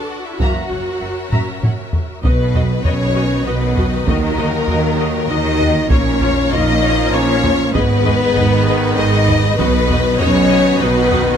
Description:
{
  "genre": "cinematic, epic orchestral film score",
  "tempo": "98 BPM",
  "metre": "3/4",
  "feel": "straight",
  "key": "unclear",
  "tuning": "A4 = 440 Hz",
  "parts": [
    { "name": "rich symphonic violin section", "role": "melody", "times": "0.0-11.4 s", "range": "Bb4 to F#5", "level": "-26 LUFS", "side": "left 2 dB", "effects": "none" },
    { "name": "clear symphonic viola section", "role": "accompaniment", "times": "0.0-11.2 s", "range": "E4 to D#5", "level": "-27 LUFS", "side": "equal", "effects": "none" },
    { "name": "mellow French horn section", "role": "sustained chords", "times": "0.0-11.4 s", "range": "Bb3 to F#4", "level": "-20 LUFS", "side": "left 4 dB", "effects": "none" },
    { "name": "warm symphonic string section", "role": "sustained chords", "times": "0.0-11.4 s", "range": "C#4 to F5", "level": "-25 LUFS", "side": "left 1 dB", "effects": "none" },
    { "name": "warm symphonic violin section", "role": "second line", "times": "0.4-11.4 s", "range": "A#4 to A#5", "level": "-22 LUFS", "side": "left 4 dB", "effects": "none" },
    { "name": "bright trombone section", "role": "sustained chords", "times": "0.4-11.4 s", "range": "D#3 to Cb4", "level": "-26 LUFS", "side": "right 5 dB", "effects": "none" },
    { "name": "warm symphonic cello section", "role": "bass", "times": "0.4-11.3 s", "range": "F#2 to Eb3", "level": "-21 LUFS", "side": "right 3 dB", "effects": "none" },
    { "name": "warm symphonic double bass section", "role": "bass", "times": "0.4-11.3 s", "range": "F#1 to Eb2", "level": "-20 LUFS", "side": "right 3 dB", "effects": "none" },
    { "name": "taiko ensemble", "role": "drums", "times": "0.4-11.4 s", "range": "none", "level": "-19 LUFS", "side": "equal", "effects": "none" }
  ],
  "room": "light reverb",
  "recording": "close, detailed microphones",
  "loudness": "-13 LUFS",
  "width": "side -8 dB against mid",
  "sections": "0.0-2.2 A section; 2.2-11.4 B section",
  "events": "drum fill 1.3-2.2",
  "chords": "0.4 F#7; 2.2 B; 4.1 Ebm; 5.9 Bbm; 7.7 Abm; 9.6 B"
}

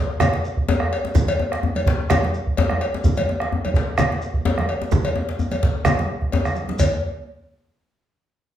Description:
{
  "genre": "west african traditional, West African drum ensemble",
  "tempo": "128 BPM",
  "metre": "4/4",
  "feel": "swing 55% on 16ths",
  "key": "none",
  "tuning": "none",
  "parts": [
    { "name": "bombo", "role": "percussion", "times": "0.1-7.0 s", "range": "none", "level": "-22 LUFS", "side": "right 1 dB", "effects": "none" },
    { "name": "djembe", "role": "percussion", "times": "0.1-7.0 s", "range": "none", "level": "-24 LUFS", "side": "left 3 dB", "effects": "none" },
    { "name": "congas", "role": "percussion", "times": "0.2-7.0 s", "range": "none", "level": "-26 LUFS", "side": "right 3 dB", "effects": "none" },
    { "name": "cowbell", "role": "percussion", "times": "0.2-7.0 s", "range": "none", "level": "-27 LUFS", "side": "left 2 dB", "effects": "none" },
    { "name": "shekere", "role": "percussion", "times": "0.2-7.0 s", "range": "none", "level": "-32 LUFS", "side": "equal", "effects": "none" }
  ],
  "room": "wet large studio reverb, RT60 0.8 s",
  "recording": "band playing live in one room",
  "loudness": "-19 LUFS",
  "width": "side -11 dB against mid",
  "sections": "0.0-6.8 A section; 6.8-8.6 B section",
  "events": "drum fill 6.4-6.8",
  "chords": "none"
}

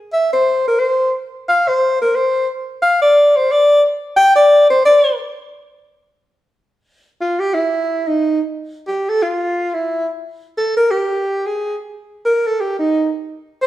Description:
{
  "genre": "jazz",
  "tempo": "free time",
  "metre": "none",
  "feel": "none",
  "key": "C major",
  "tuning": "A4 = 440 Hz",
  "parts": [
    { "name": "breathy alto saxophone", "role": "solo", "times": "0.1-5.2, 7.2-13.7 s", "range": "Eb4 to G5", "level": "-13 LUFS", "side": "equal", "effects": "none" }
  ],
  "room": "wet stone room reverb, RT60 1.3 s",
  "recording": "band playing live in one room",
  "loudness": "-13 LUFS",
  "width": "side -14 dB against mid",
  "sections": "0.0-6.8 A section; 6.8-13.7 A section",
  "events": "alto saxophone solo 0.0-6.8, 6.8-13.7",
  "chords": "none"
}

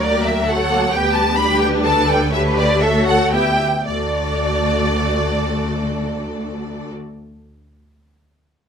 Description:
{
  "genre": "quick classical-period movement for string orchestra",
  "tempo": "109-136 BPM",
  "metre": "3/4",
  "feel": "rubato",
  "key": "D major",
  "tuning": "A4 = 442 Hz",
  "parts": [
    { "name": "warm studio violin section", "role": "melody", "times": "0.0-6.9 s", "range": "D5 to B5", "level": "-20 LUFS", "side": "equal", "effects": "none" },
    { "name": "clear studio violin section", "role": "second line", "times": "0.0-6.9 s", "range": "G4 to E5", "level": "-25 LUFS", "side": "equal", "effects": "none" },
    { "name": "warm studio viola section", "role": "accompaniment", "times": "0.0-6.9 s", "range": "F#3 to G4", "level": "-23 LUFS", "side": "left 1 dB", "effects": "none" },
    { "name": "warm studio cello section", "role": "bass", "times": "0.0-6.9 s", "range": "D2 to B4", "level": "-24 LUFS", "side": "equal", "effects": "none" },
    { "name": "warm studio double bass section", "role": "bass", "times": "0.0-6.9 s", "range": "D2", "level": "-23 LUFS", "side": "right 1 dB", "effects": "none" }
  ],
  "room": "moderate studio reverb, RT60 0.7 s",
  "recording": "minimal, uncompressed stereo recording",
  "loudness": "-15 LUFS",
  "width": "side -7 dB against mid",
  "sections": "0.0-3.9 A section; 3.9-7.0 B section",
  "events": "slowing down 0.3-3.9",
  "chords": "0.0 Gm/D; 0.9 G/D; 2.3 A7/D; 3.9 D"
}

